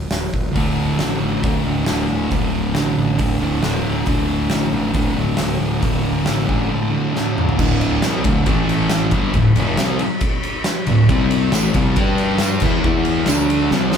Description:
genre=garage rock duo or trio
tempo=137 BPM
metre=4/4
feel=straight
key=unclear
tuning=A4 = 436 Hz
part: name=fuzz fingered electric bass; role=bass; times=0.0-14.0 s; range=D1 to G2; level=-24 LUFS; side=equal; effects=overdrive
part: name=oversized low-tuned drum kit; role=drums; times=0.1-14.0 s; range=crash cymbal, hi-hat, kick drum, ride cymbal, snare drum, toms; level=-21 LUFS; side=equal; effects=none
part: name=thick fuzz guitar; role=riff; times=0.5-14.0 s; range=D2 to G4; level=-18 LUFS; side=equal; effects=distortion
part: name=tambourine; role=percussion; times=11.5-13.4 s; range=none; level=-30 LUFS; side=right 6 dB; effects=none
room=moderate large studio reverb, RT60 1.0 s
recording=band playing live in one room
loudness=-16 LUFS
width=side -7 dB against mid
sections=0.0-7.6 A section; 7.6-14.0 B section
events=drum fill 7.2-7.6, 13.7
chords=0.0 D5; 8.5 A5; 9.1 D5; 11.1 C5; 12.0 G5; 12.6 E5; 13.3 D5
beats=0.12 | 0.56 1.00 1.45 1.89 | 2.33 2.77 3.21 3.65 | 4.09 4.53 4.96 5.41 | 5.84 6.28 6.72 7.16 | 7.60 8.04 8.47 8.91 | 9.35 9.79 10.22 10.66 | 11.10 11.53 11.97 12.41 | 12.84 13.28 13.72

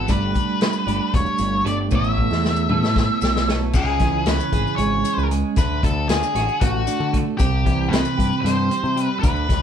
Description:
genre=psychedelic rock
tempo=230 BPM (eighths)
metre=7/8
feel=straight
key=unclear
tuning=A4 = 440 Hz
part: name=octave-fuzz lead guitar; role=melody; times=0.0-9.6 s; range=F#4 to E5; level=-24 LUFS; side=left 2 dB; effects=distortion
part: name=twelve-string electric guitar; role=riff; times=0.0-9.6 s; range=C3 to D5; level=-24 LUFS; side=right 6 dB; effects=harmonic tremolo
part: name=growling picked electric bass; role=bass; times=0.0-9.6 s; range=E1 to D3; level=-23 LUFS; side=left 1 dB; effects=overdrive
part: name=vintage drum kit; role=drums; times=0.1-9.6 s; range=crash cymbal, hi-hat, kick drum, snare drum, toms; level=-22 LUFS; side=left 1 dB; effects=none
part: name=maracas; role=percussion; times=0.1-9.4 s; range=none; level=-39 LUFS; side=left 8 dB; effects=none
room=moderate studio reverb, RT60 0.7 s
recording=band playing live in one room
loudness=-18 LUFS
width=side -8 dB against mid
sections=0.0-3.7 A section; 3.7-9.6 B section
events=drum fill 1.9-3.7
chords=0.1 Gsus2; 1.9 Aadd9; 3.7 C#m; 5.6 D; 7.4 C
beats=| 0.09 0.35 0.61 0.87 1.13 1.39 1.65 | 1.91 2.17 2.44 2.70 2.96 3.22 3.48 | 3.74 4.00 4.26 4.52 4.78 5.04 5.30 | 5.57 5.83 6.09 6.35 6.61 6.87 7.13 | 7.39 7.66 7.92 8.18 8.44 8.70 8.96 | 9.22 9.49

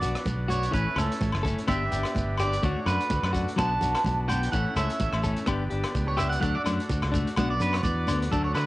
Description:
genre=highlife guitar band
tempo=126 BPM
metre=4/4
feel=swing 55% on 16ths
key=unclear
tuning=A4 = 439 Hz
part: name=clean electric guitar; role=accompaniment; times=0.0-8.7 s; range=E3 to A4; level=-31 LUFS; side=left 4 dB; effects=none
part: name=combo organ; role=sustained chords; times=0.0-8.7 s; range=A3 to G4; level=-35 LUFS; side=equal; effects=none
part: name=electric guitar at the edge of break-up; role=arpeggios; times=0.0-8.7 s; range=A4 to A5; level=-30 LUFS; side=right 2 dB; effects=spring reverb, tape echo
part: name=fingered electric bass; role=bass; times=0.0-8.7 s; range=F#1 to D3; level=-29 LUFS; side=equal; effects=none
part: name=crunchy breakbeat drum kit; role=drums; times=0.0-8.7 s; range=hi-hat, kick drum, rim click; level=-33 LUFS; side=equal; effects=cassette tape
part: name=congas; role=percussion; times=0.0-8.6 s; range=none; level=-34 LUFS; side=right 2 dB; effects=none
part: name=shekere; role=percussion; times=0.0-8.7 s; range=none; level=-38 LUFS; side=right 1 dB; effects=none
part: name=agogo bells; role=percussion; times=1.0-8.7 s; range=none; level=-35 LUFS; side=left 4 dB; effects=none
room=little or no reverb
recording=home recording on cassette, nothing above 10.4 kHz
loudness=-24 LUFS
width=side -18 dB against mid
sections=0.0-8.3 A section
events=clean electric guitar solo 0.0-8.3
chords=0.0 Bm; 0.7 A; 1.7 G; 2.6 D; 3.6 Bm; 4.5 A; 5.5 G; 6.4 D; 7.4 Bm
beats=0.26 | 0.73 1.21 1.68 2.16 | 2.63 3.11 3.58 4.05 | 4.53 5.00 5.48 5.95 | 6.42 6.90 7.37 7.84 | 8.32

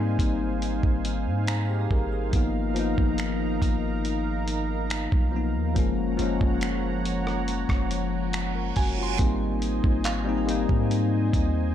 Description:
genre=contemporary R&B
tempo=70 BPM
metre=4/4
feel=straight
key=Ab major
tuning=A4 = 440 Hz
part: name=bell-like tine electric piano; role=accompaniment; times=0.0-11.7 s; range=F3 to Bb4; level=-28 LUFS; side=left 5 dB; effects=analog chorus, tape echo
part: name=warm analog pad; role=sustained chords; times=0.0-11.7 s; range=F3 to Bb5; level=-34 LUFS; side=right 4 dB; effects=chorus
part: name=long sustained 808-style bass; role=bass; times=0.0-11.7 s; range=Gb1 to Ab2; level=-29 LUFS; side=right 1 dB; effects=none
part: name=glassy synth bell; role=texture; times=0.0-2.7, 8.8-11.7 s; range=F5 to C6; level=-38 LUFS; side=right 5 dB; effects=chorus, tremolo, tape echo
part: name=dusty soul sampler-style drum kit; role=drums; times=0.2-11.5 s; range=finger snaps, handclaps, hi-hat, kick drum, rim click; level=-27 LUFS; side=right 1 dB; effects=none
part: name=reverse cymbal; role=sound effects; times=8.5-9.2 s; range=none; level=-37 LUFS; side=right 9 dB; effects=none
room=digital ambience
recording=echo-heavy mix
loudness=-23 LUFS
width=side -10 dB against mid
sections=0.0-9.2 A section; 9.2-11.7 B section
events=reverse cymbal 8.5-9.2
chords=0.0 Abmaj7; 2.3 Abm69; 5.8 Gbmaj7; 9.2 Abmaj7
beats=0.62 1.48 | 2.33 3.19 4.05 4.91 | 5.76 6.62 7.48 8.33 | 9.19 10.05 10.91

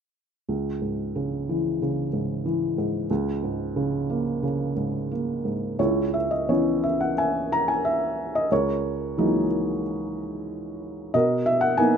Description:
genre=classical, lyrical solo piano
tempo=90 BPM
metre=4/4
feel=uneven beats, rubato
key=C# dorian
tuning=A4 = 443 Hz
part: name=felt-muted upright piano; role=solo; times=0.5-12.0 s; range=C#2 to A#5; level=-22 LUFS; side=equal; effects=none
room=light reverb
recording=close, detailed microphones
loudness=-23 LUFS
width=side -7 dB against mid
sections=0.5-5.8 A section; 5.8-12.0 B section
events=none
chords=0.5 C#m; 3.1 A#m7/C#; 5.8 C#m7; 8.5 F#13/C#; 11.1 Bmaj7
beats=| 0.49 1.16 1.81 2.45 | 3.10 3.75 4.42 5.10 | 5.79 6.48 7.17 7.84 | 8.50 9.17 9.83 10.49 | 11.14 11.78

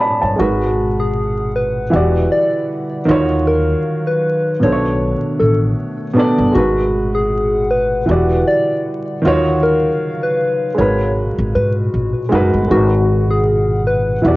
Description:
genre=lo-fi hip hop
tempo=78 BPM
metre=4/4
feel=swing 56% on 16ths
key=G# dorian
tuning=A4 = 440 Hz
part: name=dark upright piano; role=accompaniment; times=0.0-14.4 s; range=B2 to B5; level=-17 LUFS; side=right 1 dB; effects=cassette tape
part: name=upright bass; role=bass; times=0.2-14.4 s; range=E1 to G#2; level=-19 LUFS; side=equal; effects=none
part: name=soft struck synth lead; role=melody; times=0.4-14.4 s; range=F#4 to D5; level=-18 LUFS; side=left 1 dB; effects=chorus, cassette tape
part: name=warbly tape-like pad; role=sustained chords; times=0.4-14.4 s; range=A#2 to F#5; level=-25 LUFS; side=left 1 dB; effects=chorus, built-in reverb, cassette tape
room=moderate spring reverb, RT60 1.5 s, studio ambience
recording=home recording on cassette, vinyl crackle, nothing above 7.6 kHz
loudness=-13 LUFS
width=side -19 dB against mid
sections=0.0-12.7 A section; 12.7-14.4 A section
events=none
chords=0.4 G#m9; 1.9 Em9; 3.1 D#m9; 4.6 Bm9; 6.5 G#m9; 8.1 Em9; 9.2 D#m9; 10.8 G#m9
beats=| 0.39 1.16 1.93 2.69 | 3.46 4.23 5.00 5.77 | 6.54 7.31 8.08 8.85 | 9.62 10.39 11.16 11.93 | 12.70 13.46 14.23

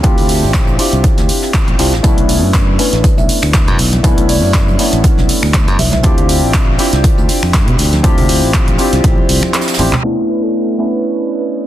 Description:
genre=deep house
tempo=120 BPM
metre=4/4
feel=swing 55% on 16ths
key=B minor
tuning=A4 = 442 Hz
part: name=percussive organ stab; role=stabs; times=0.0-11.7 s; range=A3 to G4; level=-16 LUFS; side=equal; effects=lush chorus, sidechain pumping, analog delay
part: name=modern bright fingered electric bass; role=bass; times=0.0-9.9 s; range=A1 to B2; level=-16 LUFS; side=equal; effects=sidechain pumping
part: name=deep house drum kit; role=drums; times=0.0-11.7 s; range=finger snaps, handclaps, hi-hat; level=-18 LUFS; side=equal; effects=overdrive, studio reverb
part: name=electronic kick drum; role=drums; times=0.0-9.2 s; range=none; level=-13 LUFS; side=equal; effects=overdrive, studio reverb
part: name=soft brush drum kit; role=drums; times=0.0-10.0 s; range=hi-hat, snare drum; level=-26 LUFS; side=right 3 dB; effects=none
part: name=marimba with medium mallets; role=melody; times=2.8-6.0 s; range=B4 to E5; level=-23 LUFS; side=right 1 dB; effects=analog delay
part: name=congas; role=percussion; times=3.7-10.0 s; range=none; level=-22 LUFS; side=right 2 dB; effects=none
part: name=warm velvety synth lead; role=melody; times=10.3-11.7 s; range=A4 to B4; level=-22 LUFS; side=right 3 dB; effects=chorus, analog delay
room=light reverb, small room ambience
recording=dense, heavily limited modern master, low-pass filter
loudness=-10 LUFS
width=side -13 dB against mid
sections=0.0-10.0 A section; 10.0-11.7 B section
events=filter sweep on synth stab 0.0-10.0; kick drops out 9.5-10.0; drum fill 9.5-10.0; band accent 9.9; filter sweep 10.0-11.7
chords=0.0 Dm11; 2.0 Bm11; 6.0 Dm11; 10.0 Bm11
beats=| 0.04 0.54 1.04 1.54 | 2.04 2.54 3.04 3.54 | 4.04 4.54 5.04 5.54 | 6.04 6.54 7.04 7.54 | 8.04 8.54 9.04 9.54 | 10.04 10.54 11.04 11.54

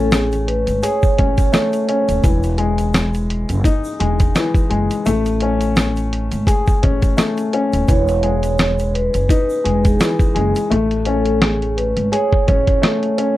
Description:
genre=hip hop, boom-bap hip-hop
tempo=85 BPM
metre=4/4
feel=swing 56% on 16ths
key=unclear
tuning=A4 = 440 Hz
part: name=vibraphone with soft mallets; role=melody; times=0.0-2.2, 7.9-13.4 s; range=G#4 to C#5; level=-20 LUFS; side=right 3 dB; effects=high-pass filter, low-pass filter, tape echo
part: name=dark upright piano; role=accompaniment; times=0.0-13.4 s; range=E3 to G#4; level=-20 LUFS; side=left 3 dB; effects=cassette tape, high-pass filter, low-pass filter
part: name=upright bass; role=bass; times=0.0-12.8 s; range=D#1 to A1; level=-20 LUFS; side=equal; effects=none
part: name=dusty soul sampler-style drum kit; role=drums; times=0.1-13.4 s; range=hi-hat, kick drum, rim click, snare drum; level=-16 LUFS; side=equal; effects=none
part: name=tube shaker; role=percussion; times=0.1-10.7 s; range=none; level=-40 LUFS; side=right 2 dB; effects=none
room=light reverb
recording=none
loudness=-14 LUFS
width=side -15 dB against mid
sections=0.0-13.4 A section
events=none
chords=0.0 Amaj7; 2.2 Emaj7; 5.1 Amaj7; 7.9 Emaj7; 10.7 Amaj7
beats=0.12 0.83 1.53 | 2.24 2.94 3.65 4.36 | 5.06 5.77 6.47 7.18 | 7.88 8.59 9.30 10.00 | 10.71 11.41 12.12 12.83

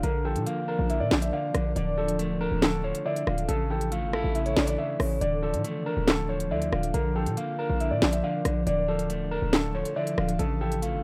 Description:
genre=hip hop, drill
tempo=139 BPM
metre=4/4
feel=half-time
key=D harmonic minor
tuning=A4 = 440 Hz
part: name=warm concert grand piano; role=melody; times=0.0-10.8 s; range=A4 to F5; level=-35 LUFS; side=equal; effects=low-pass filter
part: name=soft octave-layered synth lead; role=second line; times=0.0-11.0 s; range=C#5 to G5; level=-35 LUFS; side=equal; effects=chorus, digital delay
part: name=electric guitar at the edge of break-up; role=accompaniment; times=0.0-11.0 s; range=C#3 to E4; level=-36 LUFS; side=equal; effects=low-pass filter
part: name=ethereal airy pad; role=sustained chords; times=0.0-11.0 s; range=C#3 to Bb4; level=-38 LUFS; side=equal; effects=ensemble chorus, built-in reverb
part: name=hard-hitting 808-style bass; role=bass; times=0.0-11.0 s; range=D1 to Bb2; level=-32 LUFS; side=equal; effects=none
part: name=drill drum kit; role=drums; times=0.0-10.9 s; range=handclaps, hi-hat, rim click, snare drum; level=-29 LUFS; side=equal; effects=none
room=light reverb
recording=rough home demo mix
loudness=-27 LUFS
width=mono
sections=0.0-11.0 A section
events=none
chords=0.0 Bb; 1.8 Dm; 3.5 A; 5.2 Dm; 6.9 Bb; 8.7 Dm; 10.4 A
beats=| 0.03 0.47 0.90 1.33 | 1.76 2.19 2.62 3.06 | 3.49 3.92 4.35 4.78 | 5.21 5.64 6.08 6.51 | 6.94 7.37 7.80 8.23 | 8.67 9.10 9.53 9.96 | 10.39 10.82

